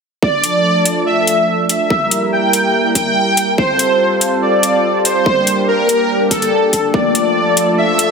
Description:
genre	heavy wobble dubstep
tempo	143 BPM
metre	4/4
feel	swing 53% on 16ths, half-time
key	D minor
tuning	A4 = 440 Hz
part	soft supersaw	melody	0.2-8.1 s	A4 to G5	-14 LUFS	equal	lush chorus, dub echo
part	lush unison pad	sustained chords	0.2-8.1 s	F3 to Bb4	-18 LUFS	right 1 dB	chorus, sidechain pumping
part	electronic kick drum	drums	0.2-7.0 s	none	-18 LUFS	equal	high-pass filter on kick, studio reverb
part	warbly tape-like pad	texture	0.8-8.1 s	Bb3 to Bb5	-24 LUFS	equal	chorus, built-in reverb, sidechain pumping
part	electronic hi-hat	drums	0.4-8.1 s	none	-16 LUFS	left 1 dB	studio reverb
room	moderate lush hall reverb, RT60 1.6 s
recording	none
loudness	-12 LUFS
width	side -5 dB against mid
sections	0.2-8.1 A section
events	fade-in on ambient pad 0.2-8.1; filter sweep on analog synth pad 0.2-8.1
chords	0.2 Dm; 1.9 Edim; 3.6 Fadd9; 5.3 Gm; 6.9 Dm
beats	| 0.23 0.65 1.06 1.49 | 1.90 2.32 2.74 3.16 | 3.58 4.00 4.42 4.84 | 5.26 5.68 6.10 6.52 | 6.94 7.36 7.78

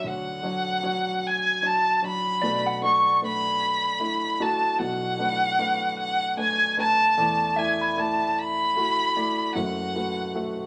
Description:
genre	acoustic folk-pop ballad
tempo	50 BPM (dotted quarters)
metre	6/8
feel	straight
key	unclear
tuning	A4 = 441 Hz
part	warm violin	melody	0.0-10.7 s	F#5 to C#6	-25 LUFS	equal	none
part	warm upright piano	accompaniment	0.0-10.7 s	F#1 to E5	-33 LUFS	equal	none
part	clean electric guitar	arpeggios	0.0-10.1 s	C#5 to B5	-35 LUFS	equal	tremolo
room	light reverb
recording	none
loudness	-24 LUFS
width	mono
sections	0.0-10.7 A section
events	none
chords	0.0 Dmaj7; 2.4 Bm7; 7.2 E7sus4; 9.5 F#m7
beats	| 0.04 1.23 | 2.42 3.61 | 4.80 5.98 | 7.17 8.36 | 9.55

